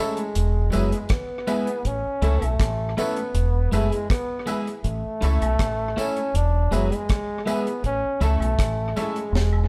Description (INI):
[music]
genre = roots reggae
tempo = 80 BPM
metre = 4/4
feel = straight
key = A major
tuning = A4 = 440 Hz
[part]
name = clear trombone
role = melody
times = 0.0-9.7 s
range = F#3 to D4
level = -30 LUFS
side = equal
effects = none
[part]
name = electric guitar at the edge of break-up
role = accompaniment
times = 0.0-9.2 s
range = G#3 to A4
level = -32 LUFS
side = equal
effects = none
[part]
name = bright upright piano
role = stabs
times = 0.0-9.1 s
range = E4 to E5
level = -33 LUFS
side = equal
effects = none
[part]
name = deep reggae drum kit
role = drums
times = 0.2-9.5 s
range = hi-hat, kick drum, rim click, snare drum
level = -28 LUFS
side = equal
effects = none
[part]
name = deep dub fingered electric bass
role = bass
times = 0.4-9.7 s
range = E1 to C#2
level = -25 LUFS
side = equal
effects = none
[part]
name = tambourine and woodblock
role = percussion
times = 0.7-9.7 s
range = none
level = -43 LUFS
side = equal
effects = none
[sound]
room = light reverb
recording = band playing live in one room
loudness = -24 LUFS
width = mono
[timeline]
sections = 0.0-9.7 A section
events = drum fill 9.3-9.7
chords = 0.4 E; 1.9 A; 3.3 E; 4.8 A; 6.3 E; 7.8 A